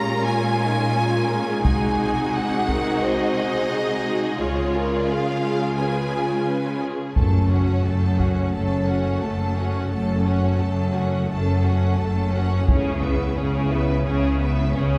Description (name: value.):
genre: cinematic, epic orchestral film score.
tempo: 87 BPM.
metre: 4/4.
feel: straight.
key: F# minor from 7.2 s.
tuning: A4 = 440 Hz.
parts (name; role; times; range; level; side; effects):
warm symphonic violin section; melody; 0.0-15.0 s; Db5 to Bb5; -32 LUFS; equal; none.
warm symphonic violin section; second line; 0.0-15.0 s; F4 to Cb5; -33 LUFS; equal; none.
rich symphonic viola section; accompaniment; 0.0-15.0 s; Ab3 to F4; -30 LUFS; equal; none.
warm French horn section; sustained chords; 0.0-15.0 s; A3 to C5; -32 LUFS; equal; none.
clear symphonic cello section; bass; 0.0-15.0 s; F#2 to Db3; -28 LUFS; equal; none.
rich symphonic double bass section; bass; 1.6-15.0 s; F#1 to Db2; -27 LUFS; equal; none.
solo taiko drums; drums; 1.6-3.0, 7.2-8.5, 12.7-14.0 s; none; -28 LUFS; equal; none.
timpani; percussion; 7.2-8.2 s; F#2; -27 LUFS; equal; none.
room: wet church reverb, RT60 3.7 s.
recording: recorded in a church or concert hall.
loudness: -22 LUFS.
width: mono.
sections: 0.0-7.2 A section; 7.2-15.0 B section.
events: none.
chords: 0.0 Bbm7; 1.6 Ab7/C; 4.4 Db; 5.8 Db7; 7.2 F#m; 12.7 C#m7.